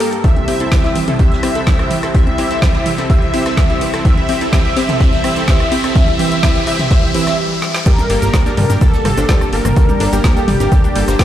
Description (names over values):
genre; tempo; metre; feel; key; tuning
progressive house; 126 BPM; 4/4; straight; G dorian; A4 = 441 Hz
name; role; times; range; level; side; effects
wide unison lead; melody; 0.0-11.2 s; G4 to E5; -20 LUFS; left 1 dB; ensemble chorus, sidechain pumping, digital delay
lush unison pad; sustained chords; 0.0-11.2 s; G2 to A5; -24 LUFS; equal; chorus, sidechain pumping
analog pluck; arpeggios; 0.0-11.2 s; E3 to G4; -22 LUFS; right 2 dB; chorus, cassette tape, sidechain pumping, digital delay
supersaw stab; stabs; 0.0-11.2 s; Bb3 to C5; -22 LUFS; equal; sidechain pumping, low-pass filter, digital delay
deep house drum kit; drums; 0.0-11.2 s; cabasa, crash cymbal, hi-hat, rim click, snare drum; -24 LUFS; equal; high-pass filter on hats, high-pass filter on snare, high-pass filter on cymbals, high-pass filter on perc, high-pass filter on room
vintage brush drum kit; drums; 0.0-11.2 s; hi-hat, snare drum; -32 LUFS; right 1 dB; none
riser, swell and impact; sound effects; 0.2-9.8 s; none; -26 LUFS; equal; none
electronic kick drum; drums; 0.2-11.2 s; none; -12 LUFS; equal; none
electronic congas and toms; percussion; 0.4-11.2 s; none; -25 LUFS; left 2 dB; sidechain pumping on perc, sidechain pumping on toms
fat analog bass; bass; 8.1-11.2 s; G1 to G2; -16 LUFS; equal; tube saturation, sidechain pumping
room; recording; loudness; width
light reverb; played on a big sound system in a bare room, stone room reverb; -11 LUFS; side -12 dB against mid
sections
0.0-7.9 A section; 7.9-11.2 B section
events
build-up 0.0-7.9; filter sweep on synth pluck 0.0-7.9; riser 0.2-7.9; swell 6.9-7.9; stop 7.4-7.9; drum fill 7.6; drop 7.9-11.2; impact 7.9-9.8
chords
0.2 C; 7.9 Gmadd9